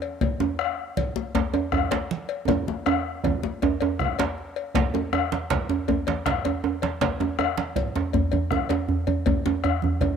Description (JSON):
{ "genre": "west african traditional, West African drum ensemble", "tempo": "106 BPM (dotted quarters)", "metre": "12/8", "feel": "straight", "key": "none", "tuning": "none", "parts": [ { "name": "bombo", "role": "percussion", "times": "0.0-10.2 s", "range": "none", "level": "-29 LUFS", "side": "left 2 dB", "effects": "none" }, { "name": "cowbell", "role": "percussion", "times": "0.0-10.2 s", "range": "none", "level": "-33 LUFS", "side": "left 10 dB", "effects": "none" }, { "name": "congas", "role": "percussion", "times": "0.2-10.2 s", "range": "none", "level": "-33 LUFS", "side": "right 6 dB", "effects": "none" }, { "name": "djembe", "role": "percussion", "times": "0.2-9.6 s", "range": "none", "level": "-28 LUFS", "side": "left 6 dB", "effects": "none" }, { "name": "djembe", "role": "percussion", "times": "0.4-10.2 s", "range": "none", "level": "-25 LUFS", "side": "right 5 dB", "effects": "none" } ], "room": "moderate spring reverb, RT60 2.3 s", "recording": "home recording on cassette", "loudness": "-22 LUFS", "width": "side -7 dB against mid", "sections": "0.0-4.8 A section; 4.8-10.2 B section", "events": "drum fill 2.5-4.8", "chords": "none" }